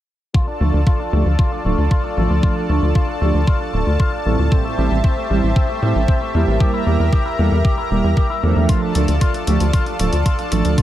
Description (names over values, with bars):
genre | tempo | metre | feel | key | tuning
italo disco | 115 BPM | 4/4 | straight | D minor | A4 = 442 Hz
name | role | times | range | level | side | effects
lush unison pad | sustained chords | 0.3-10.8 s | F4 to Bb5 | -24 LUFS | equal | chorus
electric guitar with an envelope filter | arpeggios | 0.3-10.8 s | E3 to G4 | -28 LUFS | left 4 dB | spring reverb, low-pass filter, tape echo
electronic kick drum | drums | 0.3-10.8 s | none | -17 LUFS | equal | small room ambience
analog synth brass | stabs | 0.6-10.8 s | A2 to Bb4 | -22 LUFS | right 3 dB | chorus, tape echo
tight sequencer bass | bass | 0.6-10.8 s | D1 to A2 | -17 LUFS | equal | none
electronic hi-hat | drums | 8.7-10.8 s | none | -30 LUFS | equal | small room ambience
room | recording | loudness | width
light reverb | none | -15 LUFS | side -13 dB against mid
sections
0.3-10.8 A section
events
filter sweep on clean electric guitar 0.3-10.8; filter sweep on analog polysynth 0.3-10.8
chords
0.3 Dm; 4.5 Am7; 6.6 Edim; 8.7 Dm